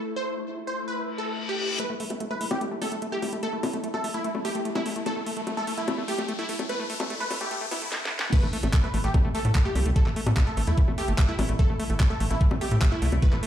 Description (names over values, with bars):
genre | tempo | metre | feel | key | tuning
psychedelic trance | 147 BPM | 4/4 | straight | unclear | A4 = 440 Hz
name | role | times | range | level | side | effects
supersaw stab | melody | 0.0-13.3 s | E4 to C5 | -32 LUFS | right 1 dB | phaser, cassette tape, sidechain pumping, tape echo
bubbling stepped-filter texture | sustained chords | 0.0-13.5 s | A3 to E4 | -36 LUFS | left 1 dB | chorus, built-in reverb, sidechain pumping
reverse cymbal and riser | sound effects | 1.2-7.9 s | none | -35 LUFS | left 4 dB | none
overdriven acid bass | riff | 1.8-13.5 s | A3 to B3 | -33 LUFS | left 1 dB | auto-pan, sidechain pumping, tape echo
garage drum kit | drums | 1.8-13.5 s | bongos, crash cymbal, handclaps, hi-hat, snare drum | -32 LUFS | left 2 dB | studio reverb
electronic kick drum | drums | 8.3-13.3 s | none | -21 LUFS | equal | studio reverb
tight sequencer bass | bass | 8.4-13.4 s | G1 to A2 | -25 LUFS | equal | none
room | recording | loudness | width
light reverb | played on a big sound system in a bare room, large studio reverb, high-pass filter | -24 LUFS | side -11 dB against mid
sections
0.0-1.8 A section; 1.8-8.3 B section; 8.3-13.5 C section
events
filter sweep 0.0-1.8, 1.8-8.3; reverse cymbal 1.2-1.8; build-up 1.8-8.3; riser 1.8-7.9; filter sweep on acid bass 1.8-8.3; filter sweep on synth texture 1.8-8.3; drum fill 7.9-8.3; drop 8.3-13.5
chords
0.0 A5